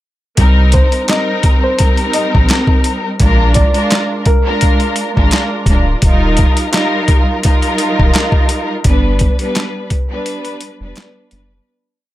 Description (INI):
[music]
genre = hip hop, boom-bap hip-hop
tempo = 85 BPM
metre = 4/4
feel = swing 54% on 16ths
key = C minor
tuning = A4 = 438 Hz
[part]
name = dark studio string section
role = accompaniment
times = 0.4-11.6 s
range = G3 to B4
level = -16 LUFS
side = equal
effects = cassette tape, high-pass filter, low-pass filter
[part]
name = soft dub sub bass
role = bass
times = 0.4-11.6 s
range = D1 to C2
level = -14 LUFS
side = equal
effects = none
[part]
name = boom bap sampler-style drum kit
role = drums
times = 0.4-11.5 s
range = handclaps, hi-hat, kick drum, snare drum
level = -12 LUFS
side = equal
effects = none
[part]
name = warm upright piano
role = melody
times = 0.7-5.3 s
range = Bb4 to Eb5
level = -20 LUFS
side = equal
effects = high-pass filter, low-pass filter, tape echo
[sound]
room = little or no reverb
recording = none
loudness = -11 LUFS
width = side -15 dB against mid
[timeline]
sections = 0.4-11.7 hook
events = fade-out 8.8-11.7; break 10.3-11.7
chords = 0.4 Cm7; 3.2 Bb7; 6.0 Ebadd9; 8.8 G